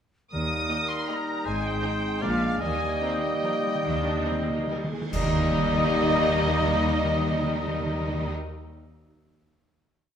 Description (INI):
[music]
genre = classical, orchestral ballroom waltz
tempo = 133-172 BPM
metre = 3/4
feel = rubato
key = Eb major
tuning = A4 = 440 Hz
[part]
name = dark symphonic violin section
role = melody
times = 0.3-8.3 s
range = Eb5 to Eb6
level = -32 LUFS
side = left 1 dB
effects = none
[part]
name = clear oboe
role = second line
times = 0.3-8.3 s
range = Bb4 to Eb5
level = -33 LUFS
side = right 2 dB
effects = none
[part]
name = concert flute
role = second line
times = 0.3-8.3 s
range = Eb6 to F6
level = -35 LUFS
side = left 3 dB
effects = none
[part]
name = warm clarinet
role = second line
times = 0.3-8.3 s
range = Bb3 to Eb4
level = -34 LUFS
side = left 3 dB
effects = none
[part]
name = mellow bassoon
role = accompaniment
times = 0.3-8.3 s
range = G3 to Ab3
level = -33 LUFS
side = right 2 dB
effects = none
[part]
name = warm French horn section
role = sustained chords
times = 0.3-8.3 s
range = G3 to Eb4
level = -34 LUFS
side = left 3 dB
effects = none
[part]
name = clear symphonic double bass section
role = bass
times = 0.3-8.3 s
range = Ab1 to Eb2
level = -32 LUFS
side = right 1 dB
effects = none
[part]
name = rich symphonic cello section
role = bass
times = 0.3-8.3 s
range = Eb2 to Eb3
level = -33 LUFS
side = left 1 dB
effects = none
[part]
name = timpani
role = percussion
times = 0.3-8.3 s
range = Eb3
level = -32 LUFS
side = left 1 dB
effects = none
[part]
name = warm symphonic violin section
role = second line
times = 0.7-8.3 s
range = Eb4 to Eb5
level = -34 LUFS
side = equal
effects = none
[part]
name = rich symphonic viola section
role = accompaniment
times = 0.7-8.3 s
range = F3 to Eb4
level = -34 LUFS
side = right 1 dB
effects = none
[part]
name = cymbal swell, clash cymbals and concert bass drum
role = percussion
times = 2.6-6.0 s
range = none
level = -35 LUFS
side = right 1 dB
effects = none
[sound]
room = wet stone room reverb, RT60 1.4 s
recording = none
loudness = -23 LUFS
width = side -8 dB against mid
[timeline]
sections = 0.3-5.1 A section; 5.1-7.7 final chord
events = slowing down 2.0-5.1; timpani fill 2.6-5.1; band accent 5.1-5.5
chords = 0.3 Eb; 1.5 Ab; 2.2 Bb7; 2.6 Eb